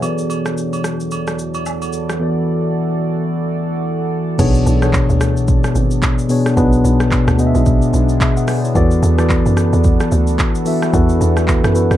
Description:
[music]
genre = amapiano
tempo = 110 BPM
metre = 4/4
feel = swing 58% on 16ths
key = B dorian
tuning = A4 = 440 Hz
[part]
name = mellow tine electric piano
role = accompaniment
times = 0.0-12.0 s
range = B2 to G#5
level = -16 LUFS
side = left 2 dB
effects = none
[part]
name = deep dark ambient pad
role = sustained chords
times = 0.0-12.0 s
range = E2 to D5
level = -23 LUFS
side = right 2 dB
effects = chorus, built-in reverb
[part]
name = afro-pop drum kit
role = drums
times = 0.0-12.0 s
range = crash cymbal, handclaps, hi-hat, kick drum, rim click, shaker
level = -18 LUFS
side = equal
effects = none
[part]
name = agogo bells and woodblock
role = percussion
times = 0.0-1.9 s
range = none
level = -29 LUFS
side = right 6 dB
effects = none
[part]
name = hollow log drum bass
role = bass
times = 4.4-12.0 s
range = G#1 to F#2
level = -16 LUFS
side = right 1 dB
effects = none
[sound]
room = light reverb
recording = dark, warm production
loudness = -13 LUFS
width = side -12 dB against mid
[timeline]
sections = 0.0-4.4 A section; 4.4-12.0 B section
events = drop 4.4-12.0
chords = 0.0 E9sus4; 4.4 Bm69; 8.8 E9sus4

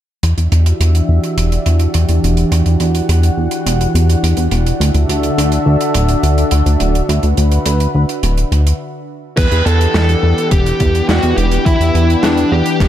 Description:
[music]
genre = synthwave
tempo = 105 BPM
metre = 4/4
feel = straight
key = E minor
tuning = A4 = 440 Hz
[part]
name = lush unison pad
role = sustained chords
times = 0.2-12.9 s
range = D3 to F#5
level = -18 LUFS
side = equal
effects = chorus, sidechain pumping
[part]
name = chorused synth bass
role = bass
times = 0.2-12.9 s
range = D1 to E2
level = -13 LUFS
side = equal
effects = none
[part]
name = modern studio drum kit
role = drums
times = 0.2-12.9 s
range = crash cymbal, hi-hat, snare drum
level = -22 LUFS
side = right 2 dB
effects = none
[part]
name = bluesy overdriven lead guitar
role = melody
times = 9.4-12.9 s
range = D4 to B4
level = -17 LUFS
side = left 1 dB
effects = distortion, ping-pong delay
[part]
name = electronic kick drum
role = drums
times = 9.4-12.9 s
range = none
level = -14 LUFS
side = equal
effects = overdrive
[sound]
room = light reverb, studio reverb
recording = none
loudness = -11 LUFS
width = side -11 dB against mid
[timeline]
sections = 0.2-9.4 A section; 9.4-12.9 B section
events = filter sweep on analog synth bass 0.2-9.4; filter sweep on analog synth pad 0.2-9.4; stop 8.8-9.4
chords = 0.2 Em7; 4.8 Dadd9; 9.4 Em7

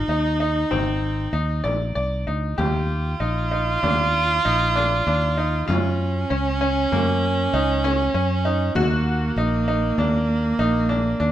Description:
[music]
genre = contemporary instrumental, chamber music in an uneven meter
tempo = 97 BPM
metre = 5/4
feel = straight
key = unclear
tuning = A4 = 435 Hz
[part]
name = rich viola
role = second line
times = 0.0-11.3 s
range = Bb3 to F4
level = -23 LUFS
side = right 2 dB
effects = none
[part]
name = bright grand piano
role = arpeggios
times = 0.1-11.3 s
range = Bb3 to D5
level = -25 LUFS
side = left 1 dB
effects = none
[part]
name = fingered electric bass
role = bass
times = 0.1-11.3 s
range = Ab1 to Gb2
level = -24 LUFS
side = equal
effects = none
[part]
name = frame drum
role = percussion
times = 0.7-11.3 s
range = none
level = -30 LUFS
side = left 1 dB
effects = none
[sound]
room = light reverb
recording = close, detailed microphones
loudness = -19 LUFS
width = side -12 dB against mid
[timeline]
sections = 0.0-11.3 A section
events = none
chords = 0.0 Ab; 2.6 Ebadd9; 5.7 Gbmaj7; 8.8 Ebm

